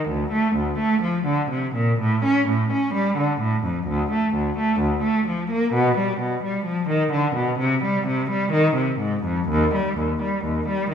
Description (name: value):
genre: classical, baroque-style suite movement for unaccompanied cello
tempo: 64 BPM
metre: 4/4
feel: rubato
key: C minor from 5.7 s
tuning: A4 = 440 Hz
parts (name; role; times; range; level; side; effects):
- warm cello; solo; 0.0-10.9 s; D2 to C#4; -20 LUFS; equal; none
room: wet recital hall reverb, RT60 1.5 s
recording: minimal, uncompressed stereo recording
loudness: -20 LUFS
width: side -8 dB against mid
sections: 0.0-10.9 A section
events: none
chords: none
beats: 0.07 1.01 | 1.98 2.94 3.86 4.79 | 5.72 6.64 7.57 8.51 | 9.47 10.43